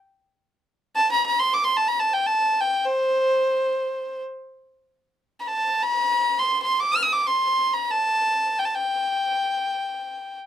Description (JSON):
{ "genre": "Arabic maqam ensemble", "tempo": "free time", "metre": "none", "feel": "none", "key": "C maqam rast", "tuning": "A4 = 440 Hz", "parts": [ { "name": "rich violin", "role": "solo", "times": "1.0-10.4 s", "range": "C5 to F6", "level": "-20 LUFS", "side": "equal", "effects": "none" } ], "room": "light reverb", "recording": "minimal, uncompressed stereo recording", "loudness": "-20 LUFS", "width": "side -10 dB against mid", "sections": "0.0-5.0 A section; 5.0-10.5 A section", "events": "none", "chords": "none" }